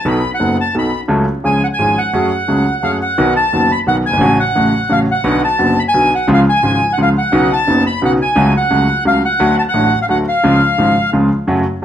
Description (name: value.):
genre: tango.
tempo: 173 BPM.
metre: 3/4.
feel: rubato.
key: F# harmonic minor.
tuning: A4 = 440 Hz.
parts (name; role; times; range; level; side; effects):
bandoneon; melody; 0.0-11.1 s; E#5 to B5; -15 LUFS; equal; plate reverb.
clear baby grand piano; accompaniment; 0.0-11.8 s; F#1 to A4; -14 LUFS; equal; none.
room: moderate large studio reverb, RT60 0.8 s.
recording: dark, warm production, vinyl crackle.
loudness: -11 LUFS.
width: side -10 dB against mid.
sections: 0.0-3.2 A section; 3.2-11.5 B section.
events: none.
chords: 0.1 B7; 1.1 F#m/C#; 1.4 C#; 2.1 F#madd9; 3.2 B; 4.2 F#m/A; 5.3 Bm; 6.3 C#; 7.3 Badd9; 8.4 F#m/C#; 9.4 D; 10.4 C#.